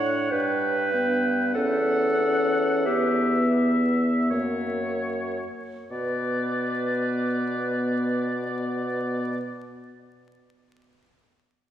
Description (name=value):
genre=classical, slow romantic movement for wind quintet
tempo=36-49 BPM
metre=3/4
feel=rubato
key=B minor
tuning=A4 = 440 Hz
part: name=clear oboe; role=second line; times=0.0-9.4 s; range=C#5 to G5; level=-30 LUFS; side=left 2 dB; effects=none
part: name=clear clarinet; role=accompaniment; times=0.0-9.4 s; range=G4 to C#5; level=-27 LUFS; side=right 1 dB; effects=none
part: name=mellow French horn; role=accompaniment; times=0.0-9.4 s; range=A#3 to D4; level=-27 LUFS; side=equal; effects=none
part: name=warm bassoon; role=bass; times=0.0-9.4 s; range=E2 to B2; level=-31 LUFS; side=equal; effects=none
room=wet concert hall reverb, RT60 2.3 s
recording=recorded in a church or concert hall, vinyl crackle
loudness=-22 LUFS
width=side -10 dB against mid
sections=0.0-5.9 A section; 5.9-10.8 B section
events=slowing down 0.0-5.9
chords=0.3 G; 1.6 Em69; 4.3 F#; 5.9 Bm